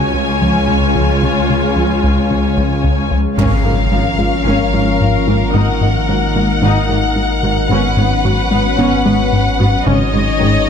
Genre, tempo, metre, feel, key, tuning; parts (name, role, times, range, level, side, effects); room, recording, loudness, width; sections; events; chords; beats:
cinematic, hybrid orchestral and electronic film score; 111 BPM; 4/4; straight; A4 = 440 Hz
rich symphonic violin section; second line; 0.0-10.7 s; A#4 to G#5; -23 LUFS; left 2 dB
warm symphonic viola section; accompaniment; 0.0-10.7 s; D#3 to F#4; -23 LUFS; equal
glassy FM pad; sustained chords; 0.0-10.7 s; D#3 to E#5; -21 LUFS; left 1 dB; ensemble chorus, built-in reverb
tight sequenced synth; arpeggios; 0.0-10.6 s; C#3 to C#5; -24 LUFS; right 1 dB
plucky analog bass; riff; 0.0-10.6 s; C#2 to G#3; -18 LUFS; left 2 dB
warm studio double bass section; bass; 0.0-10.5 s; G#1 to C#2; -22 LUFS; right 3 dB
warm symphonic cello section; bass; 0.0-10.5 s; C#2 to G#2; -21 LUFS; right 1 dB
warm symphonic violin section; melody; 3.4-10.7 s; D#5 to F#5; -19 LUFS; left 5 dB
mellow French horn section; sustained chords; 3.4-10.7 s; A#3 to D#4; -22 LUFS; left 2 dB
pure sine sub bass; bass; 3.4-10.7 s; G#1; -20 LUFS; equal
impact; sound effects; 3.4-5.5 s; -22 LUFS; equal
moderate recital hall reverb, RT60 1.7 s; close, detailed microphones; -12 LUFS; side -7 dB against mid
0.0-3.4 A section; 3.4-10.7 B section
impact 3.4-5.5
0.0 C#; 3.4 A#m/G#; 5.5 D#m/G#; 7.7 Bsus2/G#; 9.9 C#sus2/G#
0.14 0.68 | 1.22 1.76 2.30 2.84 | 3.38 3.92 4.46 5.00 | 5.54 6.08 6.63 7.17 | 7.71 8.25 8.79 9.33 | 9.87 10.41